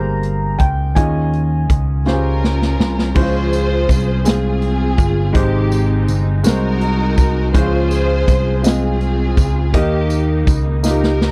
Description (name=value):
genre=slow gospel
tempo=55 BPM (dotted quarters)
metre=6/8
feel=straight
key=unclear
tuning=A4 = 436 Hz
part: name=felt-muted upright piano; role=melody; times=0.0-2.4 s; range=G5 to Bb5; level=-28 LUFS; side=equal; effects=none
part: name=clear concert grand piano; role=accompaniment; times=0.0-11.3 s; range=C3 to Eb5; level=-24 LUFS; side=equal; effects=none
part: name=vintage slap bass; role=bass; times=0.0-11.3 s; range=G1 to Eb2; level=-20 LUFS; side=equal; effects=none
part: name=natural country drum kit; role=drums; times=0.2-11.3 s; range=crash cymbal, hi-hat, kick drum, snare drum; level=-18 LUFS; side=equal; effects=none
part: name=warm studio string section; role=melody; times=2.1-11.3 s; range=Bb3 to C5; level=-24 LUFS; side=equal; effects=none
part: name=tambourine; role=percussion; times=3.5-11.2 s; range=none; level=-35 LUFS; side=equal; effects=none
room=little or no reverb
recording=dry, close 1970s-style studio recording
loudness=-16 LUFS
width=mono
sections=0.0-3.2 A section; 3.2-11.3 B section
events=drum fill 2.1-3.2, 10.8-11.3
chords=0.0 Abmaj9; 1.0 Eb9sus4; 3.2 Dbmaj7; 5.4 Abmaj7; 6.5 Ab7/C; 7.5 Dbmaj7; 9.7 Eb